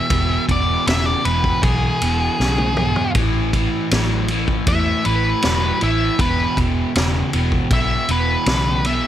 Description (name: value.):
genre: blues rock power trio and southern rock.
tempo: 79 BPM.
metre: 4/4.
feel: straight.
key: E mixolydian.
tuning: A4 = 439 Hz.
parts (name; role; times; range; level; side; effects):
octave-fuzz lead guitar; melody; 0.0-9.1 s; G#4 to E5; -22 LUFS; left 1 dB; distortion, digital delay.
crunchy overdriven guitar; riff; 0.0-9.1 s; E2 to F#3; -21 LUFS; right 1 dB; none.
vintage muted fingered electric bass; bass; 0.1-9.0 s; E1 to E2; -21 LUFS; equal; none.
vintage drum kit; drums; 0.1-9.0 s; kick drum, ride cymbal, snare drum, toms; -22 LUFS; equal; none.
room: light reverb, studio reverb.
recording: none.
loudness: -16 LUFS.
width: side -11 dB against mid.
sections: 0.0-9.1 A section.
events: lead electric guitar solo 0.0-9.1; drum fill 2.4-3.1.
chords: 0.0 E; 3.1 A5; 6.2 E5.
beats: | 0.10 0.86 1.62 2.39 | 3.15 3.91 4.67 5.43 | 6.19 6.95 7.71 8.46.